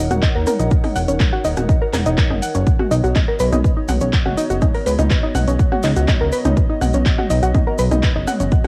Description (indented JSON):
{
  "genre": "melodic techno",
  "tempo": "123 BPM",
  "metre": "4/4",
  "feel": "straight",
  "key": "unclear",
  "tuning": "A4 = 444 Hz",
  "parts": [
    { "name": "dark analog pad", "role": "sustained chords", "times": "0.0-8.7 s", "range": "B3 to Gb5", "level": "-29 LUFS", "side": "equal", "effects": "chorus, sidechain pumping, cassette tape" },
    { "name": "soft round pluck", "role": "arpeggios", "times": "0.0-8.7 s", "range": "Db4 to Gb6", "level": "-24 LUFS", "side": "equal", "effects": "chorus, vintage 12-bit sampler grit, sidechain pumping, cassette tape, analog delay" },
    { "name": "plucky analog bass", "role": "bass", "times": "0.0-8.5 s", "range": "Eb1 to Eb2", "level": "-21 LUFS", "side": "equal", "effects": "sidechain pumping" },
    { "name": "house drum kit", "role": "drums", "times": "0.1-8.7 s", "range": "handclaps, hi-hat, rim click, toms", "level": "-27 LUFS", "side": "equal", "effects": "cassette tape" },
    { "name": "egg shaker", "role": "percussion", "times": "0.1-8.6 s", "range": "none", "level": "-38 LUFS", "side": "equal", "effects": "none" },
    { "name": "electronic kick drum", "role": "drums", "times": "0.2-8.6 s", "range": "none", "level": "-19 LUFS", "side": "equal", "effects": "cassette tape" }
  ],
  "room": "light reverb",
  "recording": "home recording on cassette",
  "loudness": "-17 LUFS",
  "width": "mono",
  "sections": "0.0-8.7 A section",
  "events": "none",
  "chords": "0.0 Ebm7; 2.7 B",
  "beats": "0.23 | 0.71 1.20 1.69 2.18 | 2.67 3.15 3.64 4.13 | 4.62 5.11 5.59 6.08 | 6.57 7.06 7.54 8.03 | 8.52"
}